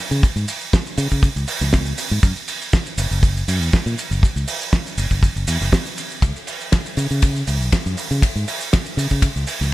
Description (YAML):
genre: nu-disco, nu disco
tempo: 120 BPM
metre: 4/4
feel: swing 53% on 16ths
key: C# minor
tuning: A4 = 440 Hz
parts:
  - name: fingered electric bass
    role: bass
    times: 0.1-9.7 s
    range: F#1 to C#3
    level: -20 LUFS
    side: equal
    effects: none
  - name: damped 70s drum kit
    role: drums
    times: 0.1-9.7 s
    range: hi-hat, ride cymbal, shaker, snare drum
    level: -23 LUFS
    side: right 2 dB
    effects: small room ambience
  - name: kick drum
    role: drums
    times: 0.2-9.3 s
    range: none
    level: -15 LUFS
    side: equal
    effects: small room ambience
room: little or no reverb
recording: bright 1980s-style digital production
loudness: -17 LUFS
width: side -17 dB against mid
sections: 0.0-9.7 A section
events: none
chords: none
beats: | 0.23 0.73 1.23 1.73 | 2.23 2.73 3.23 3.73 | 4.23 4.73 5.23 5.73 | 6.23 6.73 7.23 7.73 | 8.23 8.73 9.23 9.73